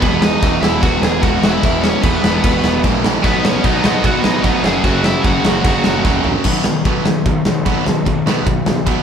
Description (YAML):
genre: punk rock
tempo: 149 BPM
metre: 4/4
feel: straight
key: B major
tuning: A4 = 439 Hz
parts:
  - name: biting lead guitar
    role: melody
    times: 0.0-6.0 s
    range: B3 to G#5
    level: -21 LUFS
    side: equal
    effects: overdrive
  - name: distorted electric guitar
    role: riff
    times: 0.0-9.0 s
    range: E2 to B3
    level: -20 LUFS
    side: right 8 dB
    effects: overdrive
  - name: scooped high-gain guitar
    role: riff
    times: 0.0, 3.2-6.2 s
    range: F#2 to B3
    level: -23 LUFS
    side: equal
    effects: distortion
  - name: sludgy distorted guitar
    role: riff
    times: 0.0-9.0 s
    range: F#2 to E4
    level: -20 LUFS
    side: left 6 dB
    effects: overdrive
  - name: fuzz picked electric bass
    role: bass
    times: 0.0-9.0 s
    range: E1 to B1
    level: -22 LUFS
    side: equal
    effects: overdrive
  - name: big rock drum kit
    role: drums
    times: 0.0-9.0 s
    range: crash cymbal, kick drum, ride cymbal, snare drum, toms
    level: -16 LUFS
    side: equal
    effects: none
room: light reverb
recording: band playing live in one room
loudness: -12 LUFS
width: side -7 dB against mid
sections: 0.0-6.5 A section; 6.5-9.0 B section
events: drum fill 6.0-6.5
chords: 0.0 E; 3.2 B; 4.6 F#; 6.5 B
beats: | 0.03 0.43 0.83 1.23 | 1.63 2.03 2.43 2.83 | 3.24 3.64 4.04 4.44 | 4.84 5.24 5.65 6.05 | 6.45 6.85 7.25 7.66 | 8.06 8.46 8.87